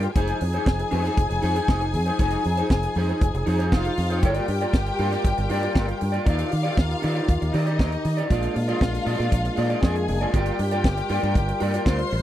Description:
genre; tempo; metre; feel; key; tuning
disco; 118 BPM; 4/4; straight; F dorian; A4 = 444 Hz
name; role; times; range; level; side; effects
warm studio string section; second line; 0.0-12.2 s; Eb4 to C6; -28 LUFS; left 3 dB; none
electric guitar at the edge of break-up; accompaniment; 0.0-12.2 s; Eb4 to D5; -29 LUFS; right 2 dB; analog chorus
tonewheel organ; sustained chords; 0.0-12.2 s; Eb3 to Bb4; -31 LUFS; equal; slow rotary speaker
fingered electric bass; bass; 0.0-12.2 s; F1 to Eb3; -25 LUFS; equal; none
tight funk drum kit; drums; 0.0-12.2 s; hi-hat, kick drum, snare drum; -22 LUFS; equal; none
room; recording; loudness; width
small room ambience; dry, close 1970s-style studio recording; -20 LUFS; side -12 dB against mid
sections
0.0-8.3 A section; 8.3-12.2 B section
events
none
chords
0.2 Fm7; 4.2 Gm7; 6.3 Ebmaj7; 8.3 Bb7; 10.3 Gm7

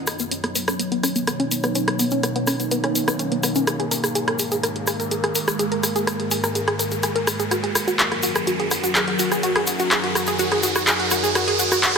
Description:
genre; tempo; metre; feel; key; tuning
melodic techno; 125 BPM; 4/4; straight; unclear; A4 = 439 Hz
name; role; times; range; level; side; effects
evolving wavetable pad; sustained chords; 0.0-12.0 s; Gb2 to C#5; -27 LUFS; equal; phaser, built-in reverb
analog drone; drone; 0.6-12.0 s; D#3 to Bb3; -32 LUFS; equal; chorus
riser; sound effects; 0.0-12.0 s; none; -29 LUFS; right 2 dB; none
wide unison pluck; arpeggios; 0.1-12.0 s; B3 to Bb4; -24 LUFS; equal; ping-pong delay
punchy analog drum machine; drums; 0.1-12.0 s; handclaps, hi-hat, rim click, toms; -23 LUFS; equal; high-pass filter on toms, studio ambience, high-pass filter on snare, high-pass filter on hats
egg shaker; percussion; 0.1-11.9 s; none; -28 LUFS; left 4 dB; none
room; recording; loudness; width
moderate lush hall reverb, RT60 2.2 s; none; -19 LUFS; side -6 dB against mid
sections
0.0-12.0 A section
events
build-up 0.0-12.0; riser 0.0-12.0; filter sweep on synth pluck 0.0-12.0; filter sweep on ambient pad 0.0-12.0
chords
0.0 Badd9; 3.7 Absus2; 7.5 Gb; 11.4 Ebmadd9/Gb

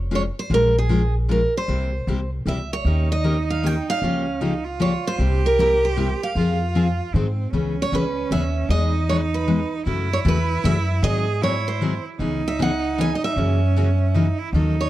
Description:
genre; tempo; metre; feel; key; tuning
acoustic string swing (jazz manouche); 154 BPM; 3/4; swing 63% on 8ths; C# minor from 7.5 s; A4 = 440 Hz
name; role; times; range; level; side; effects
upright bass; bass; 0.0-14.9 s; F1 to Ab2; -22 LUFS; equal; none
picked steel-string acoustic guitar; accompaniment; 0.1-14.8 s; C3 to C5; -24 LUFS; left 3 dB; none
picked steel-string acoustic guitar; melody; 0.2-14.9 s; Ab4 to G#5; -24 LUFS; right 2 dB; none
bright cello; second line; 2.8-14.9 s; C4 to G#4; -27 LUFS; right 6 dB; none
room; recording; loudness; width
small room ambience; dry, close 1970s-style studio recording; -19 LUFS; side -14 dB against mid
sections
0.0-7.5 A section; 7.5-14.9 B section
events
none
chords
0.0 Dbmaj7/F; 0.5 Bbm7; 1.7 C7; 2.9 Eb7; 4.0 Gm7b5/Db; 5.2 C7; 6.4 Fm; 7.1 Ab7; 7.5 C#m7; 8.7 Emaj7; 9.9 F#m7; 11.0 G#7b13; 12.2 C#m9; 13.4 F#7

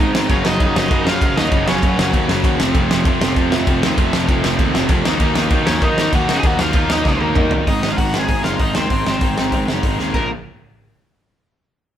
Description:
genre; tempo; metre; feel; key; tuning
punk rock; 195 BPM; 4/4; straight; Bb minor; A4 = 441 Hz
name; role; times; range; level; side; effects
cranked stack guitar; melody; 0.0-2.1, 5.7-10.3 s; Bb3 to Ab5; -22 LUFS; equal; overdrive
cranked stack guitar; riff; 0.0-10.3 s; F2 to Eb4; -23 LUFS; left 5 dB; overdrive
high-gain distorted guitar; riff; 0.0-7.5 s; F2 to Eb4; -24 LUFS; equal; distortion
overdriven semi-hollow guitar; riff; 0.0-10.3 s; F2 to Eb4; -22 LUFS; right 6 dB; none
fuzz picked electric bass; bass; 0.0-10.3 s; F1 to Eb3; -23 LUFS; equal; overdrive
loose indie drum kit; drums; 0.1-10.2 s; crash cymbal, hi-hat, kick drum, snare drum, toms; -18 LUFS; equal; none
room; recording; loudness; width
light reverb; band playing live in one room; -14 LUFS; side -10 dB against mid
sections
0.0-7.7 A section; 7.7-10.1 B section; 10.1-11.4 C section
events
drum fill 7.1-7.7, 10.0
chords
0.3 Gb; 2.6 F; 5.1 Ebm; 7.7 Ab; 10.1 Bb5

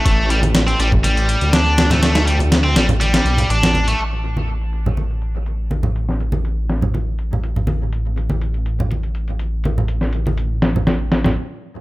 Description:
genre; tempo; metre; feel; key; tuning
breakbeat, breaks; 122 BPM; 4/4; straight; unclear; A4 = 440 Hz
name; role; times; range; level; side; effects
scooped high-gain guitar; riff; 0.0-4.0 s; G3 to D4; -20 LUFS; equal; distortion, vintage 12-bit sampler grit, tape echo
dark detuned saw bass; bass; 0.1-11.4 s; A1 to D2; -19 LUFS; equal; none
dusty soul sampler-style drum kit; drums; 0.1-11.4 s; hi-hat, kick drum, snare drum; -18 LUFS; equal; low-pass filter on hats, low-pass filter on kick, low-pass filter on snare
congas; percussion; 0.4-11.3 s; none; -24 LUFS; right 1 dB; tape echo
room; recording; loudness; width
light reverb; echo-heavy mix; -16 LUFS; side -19 dB against mid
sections
0.0-4.0 A section; 4.0-11.8 B section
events
stop 11.4-11.8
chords
none

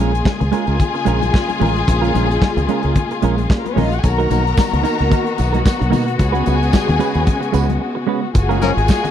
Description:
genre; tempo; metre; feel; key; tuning
disco; 111 BPM; 4/4; swing 56% on 16ths; unclear; A4 = 439 Hz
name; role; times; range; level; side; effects
warm studio string section; second line; 0.0-9.1 s; A#3 to A#5; -23 LUFS; left 5 dB; none
semi-hollow electric guitar; accompaniment; 0.0-9.1 s; G#3 to B4; -21 LUFS; right 12 dB; none
warm studio string section; sustained chords; 0.0-9.1 s; C#3 to F#4; -22 LUFS; left 3 dB; none
fingered electric bass; bass; 0.0-8.9 s; F#1 to B2; -18 LUFS; equal; none
modern studio drum kit; drums; 0.1-9.1 s; hi-hat, kick drum, snare drum; -15 LUFS; equal; none
congas; percussion; 0.3-9.1 s; none; -24 LUFS; left 7 dB; none
tambourine; percussion; 4.0-9.0 s; none; -38 LUFS; right 15 dB; none
warm horn section; stabs; 8.6-8.7 s; E#3 to A#4; -18 LUFS; left 8 dB; none
room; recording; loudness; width
little or no reverb; dry, close 1970s-style studio recording; -14 LUFS; side -10 dB against mid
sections
0.0-8.4 A section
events
break 7.8-8.4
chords
0.0 A#m7; 4.0 Bmaj7; 6.2 C#7sus4; 8.4 F#maj9

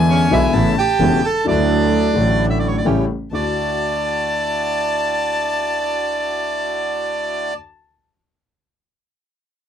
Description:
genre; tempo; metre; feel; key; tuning
tango; 130 BPM; 4/4; rubato; D major; A4 = 444 Hz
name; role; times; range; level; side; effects
rich violin; second line; 0.0-7.5 s; G#5 to A5; -25 LUFS; left 5 dB; none
warm concert grand piano; accompaniment; 0.0-7.5 s; E1 to F#4; -22 LUFS; left 6 dB; none
bandoneon; stabs; 0.0-7.5 s; F#3 to G4; -29 LUFS; right 9 dB; none
clear double bass; bass; 0.0-3.5 s; E1 to E2; -19 LUFS; right 4 dB; none
bandoneon; melody; 0.1-7.5 s; C#4 to A5; -20 LUFS; right 2 dB; none
room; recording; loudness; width
little or no reverb; dry, close 1970s-style studio recording; -16 LUFS; side -9 dB against mid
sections
0.0-3.3 A section; 3.3-7.0 B section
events
none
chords
0.0 E7; 0.5 Aadd9; 1.5 Dadd9; 2.9 A7; 3.3 Dadd9

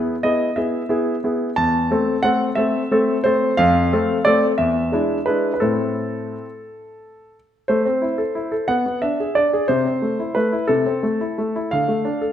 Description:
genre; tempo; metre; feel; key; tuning
classical-period piano sonatina; 60 BPM (dotted quarters); 6/8; rubato; A minor from 3.6 s; A4 = 440 Hz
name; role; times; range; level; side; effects
warm grand piano; solo; 0.0-12.3 s; E2 to A5; -17 LUFS; equal; none
room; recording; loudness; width
moderate recital hall reverb, RT60 1.4 s; none; -17 LUFS; side -10 dB against mid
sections
0.0-7.7 A section; 7.7-12.3 B section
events
none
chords
0.0 E; 1.6 Am/E; 3.6 F; 4.6 E7; 5.6 Am; 8.7 G#dim/B; 9.7 Am/C; 11.7 Dm

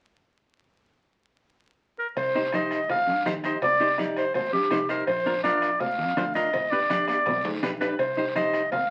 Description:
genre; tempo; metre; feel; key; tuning
latin, cumbia; 165 BPM; 4/4; straight; C minor; A4 = 444 Hz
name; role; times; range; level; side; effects
warm clarinet; melody; 2.0-8.9 s; G4 to F5; -27 LUFS; equal; none
fingered electric bass; bass; 2.2-8.9 s; G1 to G2; -41 LUFS; equal; none
bombo; percussion; 2.2-8.9 s; none; -41 LUFS; equal; none
congas; percussion; 2.2-8.9 s; none; -40 LUFS; equal; none
cowbell and timbales; percussion; 2.2-8.9 s; none; -35 LUFS; equal; none
guiro; percussion; 2.2-8.9 s; none; -42 LUFS; equal; none
clean electric guitar; accompaniment; 2.4-8.6 s; D4 to D5; -31 LUFS; equal; none
room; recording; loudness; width
wet small room reverb, RT60 0.6 s; very old 78 rpm record, vinyl crackle; -25 LUFS; mono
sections
0.7-2.2 A section; 2.2-8.9 B section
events
drum fill 7.1-8.0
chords
0.7 N.C.; 2.2 Cm; 5.1 Bb; 6.5 G; 8.0 Cm

